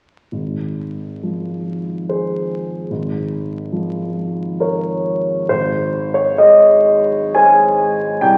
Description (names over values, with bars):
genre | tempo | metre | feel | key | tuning
classical, impressionist solo piano | 68 BPM | 3/4 | uneven beats, rubato | Ab major | A4 = 439 Hz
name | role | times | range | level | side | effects
warm grand piano | solo | 0.3-8.4 s | Ab1 to Ab5 | -16 LUFS | equal | none
room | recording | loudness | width
wet recital hall reverb, RT60 1.6 s | very old 78 rpm record, vinyl crackle | -16 LUFS | mono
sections
0.3-5.5 A section; 5.5-8.4 B section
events
none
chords
0.3 Ab6; 2.9 Bbm7/Ab; 5.5 Ab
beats
| 0.32 1.23 2.08 | 2.91 3.72 4.59 | 5.49 6.37 7.34 | 8.22